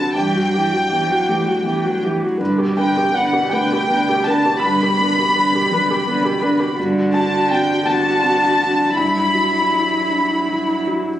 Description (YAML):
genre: neoclassical piano and strings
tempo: 54 BPM (dotted quarters)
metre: 6/8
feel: rubato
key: G major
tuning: A4 = 440 Hz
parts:
  - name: warm chamber violin section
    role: melody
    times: 0.0-10.8 s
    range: F#5 to B5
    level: -19 LUFS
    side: left 1 dB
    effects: none
  - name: warm cello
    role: second line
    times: 0.0-11.0 s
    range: B2 to F#3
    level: -24 LUFS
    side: right 2 dB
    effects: none
  - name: dark viola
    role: accompaniment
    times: 0.0-11.0 s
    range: E4 to B4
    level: -22 LUFS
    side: right 1 dB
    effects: none
  - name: felt-muted upright piano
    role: accompaniment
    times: 0.0-11.2 s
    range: G2 to B5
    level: -20 LUFS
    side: left 1 dB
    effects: none
room: light reverb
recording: recorded on a phone in the room, studio reverb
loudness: -15 LUFS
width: side -12 dB against mid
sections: 0.0-11.2 A section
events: none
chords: 0.1 Emadd9/G; 2.4 G; 6.8 D7/G; 9.0 Emadd9/G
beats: | 0.15 1.27 | 2.40 3.52 | 4.63 5.71 | 6.77 7.86 | 8.96 10.10